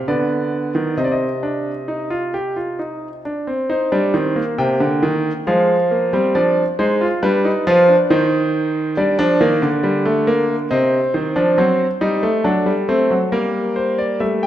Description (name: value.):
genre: classical, baroque-style 3-part fugue for grand piano.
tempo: 68 BPM.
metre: 3/4.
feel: straight.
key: C minor.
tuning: A4 = 441 Hz.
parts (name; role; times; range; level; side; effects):
clear concert grand piano; solo; 0.0-14.5 s; C3 to G5; -15 LUFS; equal; none.
room: wet recital hall reverb, RT60 1.5 s.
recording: none.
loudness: -15 LUFS.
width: side -12 dB against mid.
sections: 0.0-3.7 A section; 3.7-14.2 B section.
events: none.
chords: 0.1 Bm/D; 1.0 Cm; 3.7 Cm/Eb; 5.5 Fmadd9; 6.3 G7/F; 8.1 Cm/Eb; 9.0 Gm; 10.7 Cmadd9; 11.6 D7/F#; 13.3 Gm.